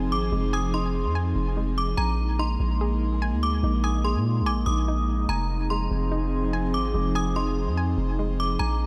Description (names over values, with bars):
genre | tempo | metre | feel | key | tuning
hip hop | 145 BPM | 4/4 | half-time | F dorian | A4 = 440 Hz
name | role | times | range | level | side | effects
metallic FM bell | melody | 0.0-8.9 s | Bb5 to Eb6 | -33 LUFS | equal | chorus, diffuse ambient delay
airy breathy pad | sustained chords | 0.0-8.9 s | F3 to Ab4 | -31 LUFS | equal | chorus
hollow square pluck | arpeggios | 0.0-8.9 s | Ab3 to Ab5 | -38 LUFS | equal | chorus, diffuse ambient delay
long sustained 808-style bass | bass | 0.0-8.9 s | F1 to Bb2 | -28 LUFS | equal | none
room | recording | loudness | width
moderate plate reverb, RT60 3.4 s | dreamy mix soaked in reverb | -25 LUFS | mono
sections
0.0-8.9 A section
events
none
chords
0.0 Fm7; 2.0 Bb7sus4; 5.3 Fm7